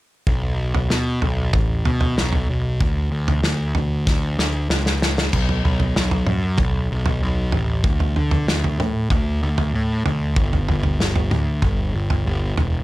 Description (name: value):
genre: quiet-loud alternative rock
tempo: 95 BPM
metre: 4/4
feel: straight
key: unclear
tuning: A4 = 441 Hz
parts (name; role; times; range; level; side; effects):
- fuzz picked electric bass; bass; 0.3-12.8 s; E1 to D3; -21 LUFS; equal; overdrive
- loose indie drum kit; drums; 0.3-12.7 s; crash cymbal, kick drum, snare drum, toms; -21 LUFS; equal; none
room: light reverb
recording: none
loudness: -18 LUFS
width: side -17 dB against mid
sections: 0.3-5.3 A section; 5.3-12.8 B section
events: drum fill 4.1-5.3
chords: none